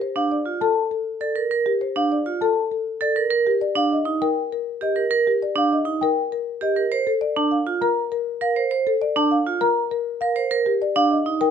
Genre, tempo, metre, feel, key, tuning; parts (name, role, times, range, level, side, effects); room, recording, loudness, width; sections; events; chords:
classical, minimalist pattern music; 100 BPM; 3/4; straight; A4 = 444 Hz
marimba with medium mallets; melody; 0.0-11.5 s; G4 to A5; -23 LUFS; left 5 dB
vibraphone with hard mallets; arpeggios; 0.2-11.5 s; D4 to C5; -21 LUFS; right 5 dB
large celesta; arpeggios; 0.6-11.5 s; G5 to Bb5; -24 LUFS; left 4 dB
little or no reverb; close, detailed microphones; -19 LUFS; side -7 dB against mid
0.0-11.5 A section
0.0 Gm9 (rootless); 3.3 Ebmaj7; 6.9 Bbmaj7; 10.5 Ebmaj7